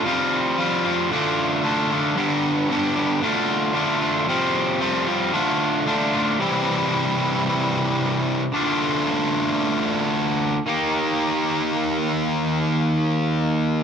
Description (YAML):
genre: rock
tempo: 113 BPM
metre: 4/4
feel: straight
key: D dorian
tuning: A4 = 441 Hz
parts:
  - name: fuzz guitar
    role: solo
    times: 0.0-13.8 s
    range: G2 to G4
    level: -19 LUFS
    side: equal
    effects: distortion, slapback echo
room: light reverb, digital ambience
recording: none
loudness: -19 LUFS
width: side -7 dB against mid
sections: 0.0-6.4 A section; 6.4-13.8 B section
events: none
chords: 0.1 Fsus2; 1.1 Dm; 2.2 G; 3.2 Dm; 4.3 Fsus2; 5.3 Dm; 6.4 C; 8.5 Dm; 10.7 Eb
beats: | 0.06 0.58 1.11 1.64 | 2.17 2.70 3.22 3.75 | 4.28 4.81 5.34 5.87 | 6.40 6.93 7.47 8.00 | 8.53 9.07 9.60 10.14 | 10.67 11.21 11.74 12.28 | 12.81 13.35